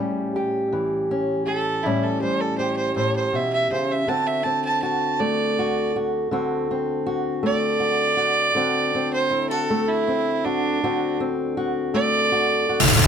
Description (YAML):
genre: blues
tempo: 54 BPM (dotted quarters)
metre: 12/8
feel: straight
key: unclear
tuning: A4 = 440 Hz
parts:
  - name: fingerpicked old ladder-braced acoustic guitar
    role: accompaniment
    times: 0.0-13.1 s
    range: A2 to G4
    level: -23 LUFS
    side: left 1 dB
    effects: none
  - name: clear fiddle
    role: melody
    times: 1.5-13.0 s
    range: D4 to A5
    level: -22 LUFS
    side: right 3 dB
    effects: none
room: light reverb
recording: close, detailed microphones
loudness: -20 LUFS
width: side -7 dB against mid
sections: 0.0-13.1 A section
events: fiddle solo 0.0-13.1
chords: 0.0 A7; 4.1 D7